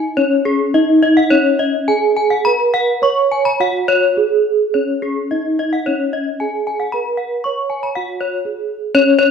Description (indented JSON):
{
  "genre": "gamelan",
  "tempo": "105-124 BPM",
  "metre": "4/4",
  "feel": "straight",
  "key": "Db slendro",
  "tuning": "A4 = 440 Hz",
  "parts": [
    { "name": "gamelan-type bronze metallophone", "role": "melody", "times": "0.0-9.3 s", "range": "Db4 to Db5", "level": "-16 LUFS", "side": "right 2 dB", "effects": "none" },
    { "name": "gamelan-type bronze metallophone", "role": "arpeggios", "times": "0.0-9.3 s", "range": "Ab4+25c to Db6", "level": "-17 LUFS", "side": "left 4 dB", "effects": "none" }
  ],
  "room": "wet recital hall reverb, RT60 1.4 s",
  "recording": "none",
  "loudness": "-14 LUFS",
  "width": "side -6 dB against mid",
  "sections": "0.2-8.9 A section",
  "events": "none",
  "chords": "none",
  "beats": "| 0.17 0.74 1.31 1.89 | 2.46 3.03 3.60 4.17 | 4.74 5.31 5.86 6.40 | 6.93 7.45 7.96 8.46 | 8.95"
}